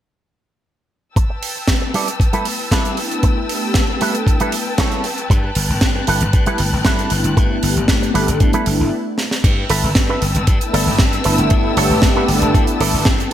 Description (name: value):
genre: nu-disco, nu disco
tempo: 116 BPM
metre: 4/4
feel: straight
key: unclear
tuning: A4 = 440 Hz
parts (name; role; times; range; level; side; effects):
- dark symphonic string section; sustained chords; 1.2-13.3 s; B4 to F#6; -25 LUFS; left 3 dB; sidechain pumping
- electric guitar with an envelope filter; riff; 1.2-13.1 s; G3 to D5; -22 LUFS; right 3 dB; wide subtle chorus, low-pass filter, digital delay
- electronic kick drum; drums; 1.2-13.2 s; none; -16 LUFS; equal; overdrive
- tight funk drum kit; drums; 1.2-13.3 s; crash cymbal, hi-hat, snare drum; -21 LUFS; right 2 dB; gated reverb
- warm analog pad; accompaniment; 2.3-12.7 s; A3 to A4; -21 LUFS; left 1 dB; chorus, digital delay
- slap bass; bass; 5.3-13.3 s; G1 to G2; -20 LUFS; equal; none
room: light reverb, small room ambience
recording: bright 1980s-style digital production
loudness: -14 LUFS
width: side -11 dB against mid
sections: 1.2-9.4 A section; 9.4-13.3 B section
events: filter sweep on analog synth pad 1.2-9.4; stop 8.9-9.4; drum fill 9.2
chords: 1.2 G69; 9.2 N.C.; 9.4 G69